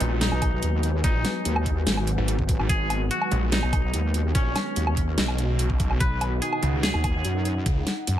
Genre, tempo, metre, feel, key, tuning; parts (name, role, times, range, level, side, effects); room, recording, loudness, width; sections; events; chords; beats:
heavy wobble dubstep; 145 BPM; 4/4; half-time; G# minor; A4 = 440 Hz
twangy electric guitar; melody; 0.0-7.6 s; C#4 to B4; -31 LUFS; equal; tremolo, digital delay
lush unison pad; sustained chords; 0.0-7.6 s; B2 to F#4; -33 LUFS; equal; chorus, sidechain pumping
snarling distorted saw bass; bass; 0.0-7.9 s; G#1 to C#2; -24 LUFS; equal; distortion, overdrive
dubstep drum kit; drums; 0.0-8.2 s; hi-hat, snare drum, woodblock; -27 LUFS; equal
warbly tape-like pad; texture; 0.0-8.2 s; D#4 to G#5; -36 LUFS; equal; chorus, built-in reverb, sidechain pumping
wobble bass; bass; 0.3-8.2 s; G#1 to F#2; -25 LUFS; equal; chorus, overdrive
electronic kick drum; drums; 0.4-7.7 s; -25 LUFS; equal
little or no reverb; lossy compression artefacts; -22 LUFS; side -12 dB against mid
0.0-8.2 A section
0.0 G#m7; 6.0 B
0.21 0.63 | 1.04 1.45 1.87 2.28 | 2.69 3.11 3.52 3.94 | 4.35 4.76 5.18 5.59 | 6.00 6.42 6.83 7.25 | 7.66 8.07